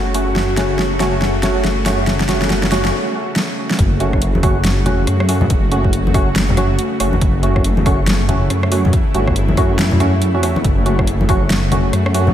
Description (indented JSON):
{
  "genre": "deep dubstep",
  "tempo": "140 BPM",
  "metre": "4/4",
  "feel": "swing 60% on 16ths, half-time",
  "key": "F# minor",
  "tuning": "A4 = 441 Hz",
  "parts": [
    { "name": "bowed-like drone", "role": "sustained chords", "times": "0.0-12.3 s", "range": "C#3 to F#4", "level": "-22 LUFS", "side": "equal", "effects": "built-in reverb" },
    { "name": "dark detuned saw bass", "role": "bass", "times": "0.0-12.3 s", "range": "F#1 to F#2", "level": "-17 LUFS", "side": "equal", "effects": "none" },
    { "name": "percussive organ stab", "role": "stabs", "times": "0.1-12.3 s", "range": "A3 to F#4", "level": "-21 LUFS", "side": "right 1 dB", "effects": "analog chorus, dub echo" },
    { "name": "deep house drum kit", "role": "drums", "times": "0.1-12.2 s", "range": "hi-hat, rim click, snare drum", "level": "-21 LUFS", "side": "equal", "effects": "overdrive" },
    { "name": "electronic kick drum", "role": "drums", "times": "3.8-11.4 s", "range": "none", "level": "-18 LUFS", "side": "equal", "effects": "overdrive" },
    { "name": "congas", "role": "percussion", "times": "4.3-12.3 s", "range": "none", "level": "-22 LUFS", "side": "left 1 dB", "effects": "none" }
  ],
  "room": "moderate lush hall reverb, RT60 2.0 s, digital ambience",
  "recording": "dreamy mix soaked in reverb",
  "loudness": "-13 LUFS",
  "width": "side -10 dB against mid",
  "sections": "0.0-3.8 A section; 3.8-12.3 B section",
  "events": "build-up 0.0-3.8; drum fill 0.0-2.9, 3.4-3.8; break 2.9-3.8; drop 3.8-12.3",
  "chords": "0.0 F#m",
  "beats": "| 0.36 0.79 1.22 1.65 | 2.07 2.50 2.93 3.36 | 3.79 4.22 4.64 5.07 | 5.50 5.93 6.36 6.79 | 7.22 7.64 8.07 8.50 | 8.93 9.36 9.79 10.22 | 10.64 11.07 11.50 11.93"
}